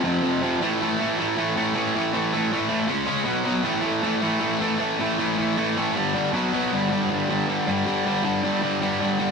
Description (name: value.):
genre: punk.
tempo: 157 BPM.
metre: 4/4.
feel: straight.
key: A mixolydian.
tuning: A4 = 440 Hz.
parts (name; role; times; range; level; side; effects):
cranked stack guitar; solo; 0.0-9.3 s; F2 to C#4; -21 LUFS; equal; overdrive.
room: moderate stone room reverb, RT60 1.3 s.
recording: rough rehearsal-room recording.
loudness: -21 LUFS.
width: side -5 dB against mid.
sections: 0.6-9.3 A section.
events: none.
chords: 0.0 F5; 0.6 A5; 2.9 C#5; 3.3 B5; 3.7 A5; 6.0 G5; 6.3 B5; 6.7 G5.